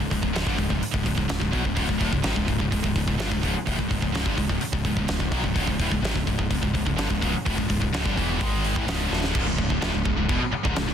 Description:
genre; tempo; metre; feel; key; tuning
heavy metal; 126 BPM; 4/4; straight; C# minor; A4 = 440 Hz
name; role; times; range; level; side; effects
scooped high-gain guitar; riff; 0.0-10.9 s; C#2 to G#3; -27 LUFS; left 10 dB; distortion
scooped high-gain guitar; riff; 0.0-10.9 s; C#2 to G#3; -28 LUFS; right 11 dB; distortion
growling picked electric bass; bass; 0.0-10.9 s; C#1 to B1; -29 LUFS; equal; overdrive
big rock drum kit; drums; 0.0-10.9 s; china cymbal, crash cymbal, hi-hat, kick drum, snare drum; -27 LUFS; equal; none
room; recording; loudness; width
small room ambience; dense, heavily limited modern master; -22 LUFS; side -8 dB against mid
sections
0.0-9.4 A section; 9.4-10.9 B section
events
drum fill 9.1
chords
0.0 C#m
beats
0.34 0.82 1.29 | 1.77 2.24 2.71 3.19 | 3.66 4.14 4.61 5.09 | 5.56 6.04 6.51 6.98 | 7.46 7.93 8.40 8.88 | 9.35 9.82 10.30 10.77

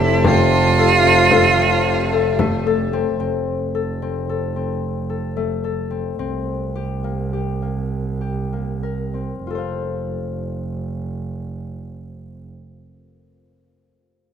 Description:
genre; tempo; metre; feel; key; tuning
contemporary instrumental, chamber music in an uneven meter; 184-224 BPM (eighths); 11/8; straight; F major; A4 = 445 Hz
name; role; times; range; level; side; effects
bright cello; melody; 0.0-2.6 s; E4 to F4; -16 LUFS; right 3 dB; none
warm chamber string section; sustained chords; 0.0-3.2 s; G4 to A5; -26 LUFS; equal; none
concert harp; arpeggios; 0.0-12.6 s; A3 to F5; -22 LUFS; left 8 dB; none
dark double bass; bass; 0.0-12.5 s; F1 to C2; -23 LUFS; right 4 dB; none
frame drum; percussion; 0.2-2.6 s; none; -23 LUFS; left 3 dB; none
room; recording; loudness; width
moderate concert hall reverb, RT60 2.4 s; none; -17 LUFS; side -8 dB against mid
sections
0.0-3.2 A section; 3.2-9.4 B section; 9.4-13.0 C section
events
slowing down 4.8-9.4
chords
0.0 Fadd9; 3.2 F; 6.2 C5; 9.4 F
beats
| 0.25 0.52 0.79 1.05 1.32 1.59 1.86 2.13 2.40 2.67 2.93 | 3.20 3.47 3.74 4.01 4.28 4.55 4.82 5.09 5.36 5.63 5.90 | 6.18 6.46 6.74 7.02 7.31 7.60 7.90 8.20 8.51 8.81 9.13 | 9.45 9.77 10.10 10.43 10.75 11.08 11.40 11.73 12.05 12.38

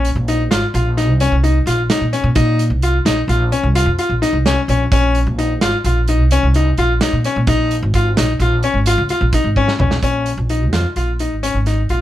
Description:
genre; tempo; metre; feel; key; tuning
progressive instrumental, band music in an uneven meter; 258 BPM (eighths); 11/8; straight; Bb minor; A4 = 440 Hz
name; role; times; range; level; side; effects
bright grand piano; arpeggios; 0.0-12.0 s; Db4 to F4; -18 LUFS; left 3 dB; none
upright bass; bass; 0.0-12.0 s; Ab1 to Bb2; -16 LUFS; equal; none
loose indie drum kit; drums; 0.0-12.0 s; hi-hat, kick drum, snare drum, toms; -21 LUFS; right 2 dB; none
room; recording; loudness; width
little or no reverb; close, detailed microphones; -13 LUFS; side -13 dB against mid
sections
0.0-10.0 A section; 10.0-12.0 B section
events
drum fill 9.6-10.0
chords
0.0 Db; 7.5 Bbm7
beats
0.05 0.28 0.51 0.74 0.97 1.21 1.44 1.67 1.90 2.13 | 2.36 2.60 2.83 3.06 3.29 3.52 3.76 3.99 4.22 4.45 4.68 | 4.92 5.15 5.38 5.61 5.84 6.08 6.31 6.54 6.77 7.00 7.24 | 7.47 7.70 7.93 8.17 8.40 8.63 8.86 9.10 9.33 9.56 9.80 | 10.03 10.26 10.49 10.73 10.96 11.20 11.43 11.66 11.90

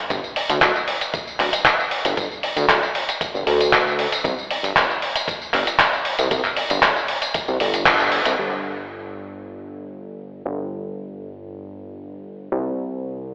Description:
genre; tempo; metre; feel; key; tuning
nu-disco, nu disco; 116 BPM; 4/4; straight; unclear; A4 = 440 Hz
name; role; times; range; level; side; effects
fat analog bass; bass; 0.1-13.3 s; D1 to D2; -27 LUFS; equal; none
dusty soul sampler-style drum kit; drums; 0.1-8.4 s; handclaps, hi-hat, tambourine; -22 LUFS; equal; none
electronic kick drum; drums; 0.1-8.0 s; none; -35 LUFS; equal; none
room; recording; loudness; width
wet lush hall reverb, RT60 2.6 s; played on a big sound system in a bare room, stone room reverb, telephone sound; -20 LUFS; mono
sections
0.0-8.4 A section; 8.4-13.3 B section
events
band accent 7.9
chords
none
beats
| 0.11 0.62 1.14 1.66 | 2.18 2.69 3.21 3.73 | 4.25 4.76 5.28 5.80 | 6.31 6.83 7.35 7.87 | 8.38 8.90 9.42 9.93 | 10.45 10.97 11.49 12.00 | 12.52 13.04

